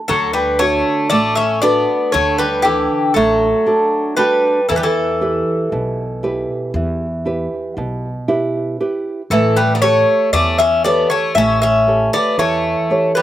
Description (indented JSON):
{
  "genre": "greek folk, Greek bouzouki band",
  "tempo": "117 BPM (eighths)",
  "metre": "9/8",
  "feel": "straight",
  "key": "D major",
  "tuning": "A4 = 441 Hz",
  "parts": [
    { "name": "Greek bouzouki", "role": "melody", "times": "0.1-13.2 s", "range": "G4 to E5", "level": "-16 LUFS", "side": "left 1 dB", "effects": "none" },
    { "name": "Greek bouzouki", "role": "second line", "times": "0.1-13.2 s", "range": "E3 to C#4", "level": "-20 LUFS", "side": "left 2 dB", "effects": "slapback echo" },
    { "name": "nylon-string guitar", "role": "accompaniment", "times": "0.1-13.2 s", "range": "B2 to F#5", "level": "-19 LUFS", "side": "right 2 dB", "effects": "slapback echo" },
    { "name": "upright bass", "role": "bass", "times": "0.1-12.7 s", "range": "A1 to E2", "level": "-24 LUFS", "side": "left 1 dB", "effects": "none" }
  ],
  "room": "little or no reverb",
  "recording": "recorded outdoors, with no room sound",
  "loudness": "-14 LUFS",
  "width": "side -13 dB against mid",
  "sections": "0.1-13.2 A section",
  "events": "none",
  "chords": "0.1 D; 4.7 Em; 9.3 A7",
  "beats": "| 0.09 0.60 1.11 1.62 2.14 2.65 3.16 3.67 4.19 | 4.70 5.21 5.72 6.23 6.75 7.26 7.77 8.28 8.79 | 9.30 9.82 10.33 10.84 11.35 11.87 12.38 12.89"
}